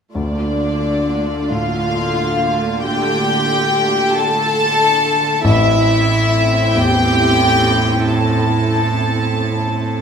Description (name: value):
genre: cinematic, emotional film score for orchestra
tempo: 46 BPM (dotted quarters)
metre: 6/8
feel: rubato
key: D minor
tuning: A4 = 440 Hz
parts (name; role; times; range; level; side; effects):
- warm studio violin section; second line; 0.1-10.0 s; D4 to A4; -20 LUFS; equal; none
- dark studio viola section; accompaniment; 0.1-10.0 s; A3 to F4; -23 LUFS; right 2 dB; none
- warm baby grand piano; accompaniment; 0.1-10.0 s; A1 to A2; -21 LUFS; left 1 dB; none
- warm studio cello section; bass; 0.1-10.0 s; A2 to D3; -21 LUFS; right 4 dB; none
- rich studio violin section; melody; 0.2-10.0 s; D5 to A5; -18 LUFS; left 3 dB; none
room: wet recital hall reverb, RT60 1.3 s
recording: minimal, uncompressed stereo recording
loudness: -13 LUFS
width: side -7 dB against mid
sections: 0.1-10.0 A section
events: none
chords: 0.1 Dm; 5.5 Am